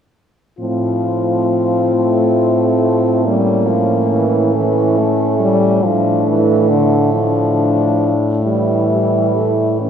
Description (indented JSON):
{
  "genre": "classical, lyrical piece for horn quartet",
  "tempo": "46 BPM (dotted quarters)",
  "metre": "6/8",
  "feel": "rubato",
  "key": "unclear",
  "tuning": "A4 = 436 Hz",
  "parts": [
    { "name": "warm French horn", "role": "melody", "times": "0.6-9.9 s", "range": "C#4 to F4", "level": "-19 LUFS", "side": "left 6 dB", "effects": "none" },
    { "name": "warm French horn", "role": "second line", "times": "0.6-9.9 s", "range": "G3 to C#4", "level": "-18 LUFS", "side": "right 5 dB", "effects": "none" },
    { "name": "clear French horn", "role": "accompaniment", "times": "0.6-9.9 s", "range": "D3 to A3", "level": "-18 LUFS", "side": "left 1 dB", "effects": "none" },
    { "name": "warm French horn", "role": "bass", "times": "0.6-9.9 s", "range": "A2", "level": "-18 LUFS", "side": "equal", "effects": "none" }
  ],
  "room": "wet church reverb, RT60 2.6 s",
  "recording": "recorded in a church or concert hall",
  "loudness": "-12 LUFS",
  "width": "side -8 dB against mid",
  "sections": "0.6-9.9 A section",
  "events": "none",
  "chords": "0.6 F/A; 3.2 A7b9; 5.8 Dm/A; 8.4 A7(no3)",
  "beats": "| 0.59 1.93 | 3.24 4.54 | 5.83 7.12 | 8.44 9.79"
}